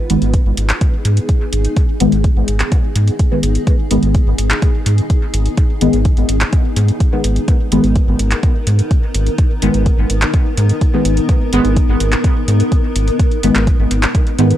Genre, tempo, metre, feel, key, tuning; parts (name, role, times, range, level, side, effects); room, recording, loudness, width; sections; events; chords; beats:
dub techno; 126 BPM; 4/4; straight; G# minor; A4 = 440 Hz
granular cloud pad; sustained chords; 0.0-14.6 s; B3 to A#4; -22 LUFS; left 1 dB; built-in reverb, sidechain pumping
deep mellow chord stab; stabs; 0.1-14.5 s; D#3 to B3; -18 LUFS; left 1 dB; chorus, phaser, sidechain pumping, dub echo
round analog bass; bass; 0.1-14.5 s; G#1 to G#2; -15 LUFS; equal; tube saturation, sidechain pumping
deep house drum kit; drums; 0.1-14.6 s; handclaps, hi-hat; -22 LUFS; equal; dub echo
electronic kick drum; drums; 0.3-14.2 s; -14 LUFS; equal
little or no reverb; dry, gritty hardware recording, cassette tape; -12 LUFS; side -12 dB against mid
0.0-14.6 A section
0.0 G#m
0.34 0.81 1.29 | 1.76 2.24 2.72 3.19 | 3.67 4.15 4.62 5.10 | 5.58 6.05 6.53 7.00 | 7.48 7.96 8.43 8.91 | 9.38 9.86 10.34 10.81 | 11.29 11.77 12.24 12.72 | 13.19 13.67 14.15